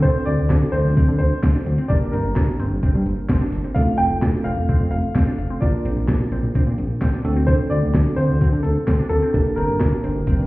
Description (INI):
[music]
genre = synth-pop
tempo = 129 BPM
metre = 4/4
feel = straight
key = unclear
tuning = A4 = 440 Hz
[part]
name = warm concert grand piano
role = melody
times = 0.0-10.5 s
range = A4 to G5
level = -25 LUFS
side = equal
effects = analog delay
[part]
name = bell-like tine electric piano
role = accompaniment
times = 0.0-10.5 s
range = A3 to Bb4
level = -26 LUFS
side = right 2 dB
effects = none
[part]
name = resonant blip pluck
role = arpeggios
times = 0.0-10.4 s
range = C4 to D4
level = -31 LUFS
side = left 1 dB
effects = phaser, analog delay
[part]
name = fat analog bass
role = bass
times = 0.0-10.5 s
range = F1 to D3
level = -20 LUFS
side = equal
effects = none
[part]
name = clean 12-bit digital drum machine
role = drums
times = 0.0-10.4 s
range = handclaps, hi-hat, kick drum, snare drum, toms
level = -19 LUFS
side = equal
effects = none
[sound]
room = light reverb, digital ambience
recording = heard muffled through a wall, stone room reverb, EQ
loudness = -17 LUFS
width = side -19 dB against mid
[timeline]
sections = 0.0-10.5 A section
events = drum fill 10.3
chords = 0.0 D7; 1.9 Gm; 3.8 F; 5.6 Bb; 7.2 D7; 9.3 Gm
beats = | 0.04 0.50 0.97 1.43 | 1.90 2.36 2.83 3.29 | 3.76 4.22 4.69 5.15 | 5.62 6.08 6.55 7.01 | 7.48 7.95 8.41 8.88 | 9.34 9.81 10.27